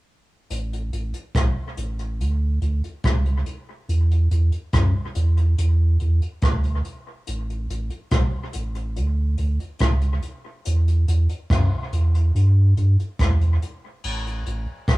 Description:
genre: roots reggae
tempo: 71 BPM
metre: 4/4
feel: straight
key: unclear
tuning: A4 = 440 Hz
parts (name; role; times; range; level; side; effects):
- warm sub bass; bass; 0.5-15.0 s; A1 to G2; -19 LUFS; right 1 dB; none
- jazz brush drum kit; drums; 0.5-15.0 s; crash cymbal, hi-hat, kick drum, rim click; -24 LUFS; equal; cassette tape
room: little or no reverb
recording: home recording on cassette, small room ambience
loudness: -19 LUFS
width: side -20 dB against mid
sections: 0.5-14.0 A section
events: none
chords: none

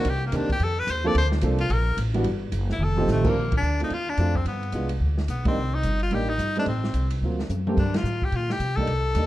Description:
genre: jazz, small-group swing and bop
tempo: 217 BPM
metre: 4/4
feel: swing 62% on 8ths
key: unclear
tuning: A4 = 439 Hz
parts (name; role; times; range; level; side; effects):
- edgy tenor saxophone; melody; 0.0-9.3 s; A3 to D5; -28 LUFS; left 2 dB; none
- warm upright piano; accompaniment; 0.0-9.3 s; Eb3 to Bb4; -28 LUFS; right 2 dB; none
- upright bass; bass; 0.0-9.3 s; F1 to C3; -25 LUFS; equal; none
- open jazz drum kit; drums; 0.0-9.2 s; crash cymbal, hi-hat, kick drum, ride cymbal, snare drum, toms; -30 LUFS; equal; none
room: light reverb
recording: dark, warm production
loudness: -22 LUFS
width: side -15 dB against mid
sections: 0.0-3.4 A section; 3.4-9.3 B section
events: tenor saxophone solo 0.0-3.4; drum fill 2.8, 7.5; band accent 3.5, 5.4, 7.9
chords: 0.0 Cm9; 0.6 F6; 1.1 Bbmaj9; 2.2 Emadd9 (rootless); 2.8 F7; 3.4 Bbmaj9; 4.5 G7b9; 5.6 Cm7; 6.7 Am; 7.2 D7alt; 7.8 Gm11

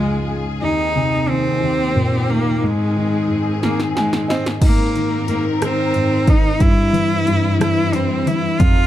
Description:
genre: six-eight pop ballad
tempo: 60 BPM (dotted quarters)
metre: 6/8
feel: straight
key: Ab major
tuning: A4 = 441 Hz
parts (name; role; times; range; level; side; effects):
- bright cello; melody; 0.0-8.9 s; Ab3 to F4; -20 LUFS; right 1 dB; none
- felt-muted upright piano; accompaniment; 0.0-8.9 s; Db2 to Ab5; -20 LUFS; left 1 dB; none
- clear symphonic string section; sustained chords; 0.0-8.9 s; Db2 to Bb4; -24 LUFS; left 1 dB; none
- punchy analog drum machine; drums; 3.6-8.8 s; crash cymbal, hi-hat, kick drum, rim click, snare drum; -17 LUFS; equal; none
room: studio reverb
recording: dark, warm production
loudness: -15 LUFS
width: side -12 dB against mid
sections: 0.0-4.6 A section; 4.6-8.9 B section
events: felt piano fill 3.6-4.6; drum fill 3.6-4.6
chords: 0.0 Db; 0.6 Ab/Eb; 1.6 Eb; 2.6 Ab; 4.6 Abadd9; 6.6 C/G

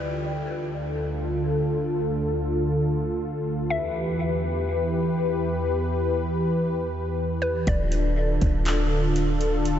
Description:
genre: hip hop, atmospheric cloud-rap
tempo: 121 BPM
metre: 4/4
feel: half-time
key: D dorian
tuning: A4 = 442 Hz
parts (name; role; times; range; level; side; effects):
- mallet-like synth pluck; melody; 0.0-0.7, 3.7-8.6 s; B4 to E5; -33 LUFS; left 2 dB; chorus, low-pass filter, diffuse ambient delay
- warm analog pad; sustained chords; 0.0-9.8 s; D2 to B4; -24 LUFS; equal; chorus, sidechain pumping, low-pass filter
- warm 808-style bass; bass; 7.7-9.8 s; D1; -24 LUFS; equal; none
- smooth R&B drum kit; drums; 7.7-9.8 s; handclaps, hi-hat, kick drum; -30 LUFS; equal; none
room: moderate huge ambient reverb, RT60 7.4 s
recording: dreamy mix soaked in reverb, nothing above 7.9 kHz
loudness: -23 LUFS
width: side -10 dB against mid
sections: 0.0-7.7 A section; 7.7-9.8 B section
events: filter sweep 0.0-7.7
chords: 0.0 Dm; 3.7 Em; 7.7 Dm

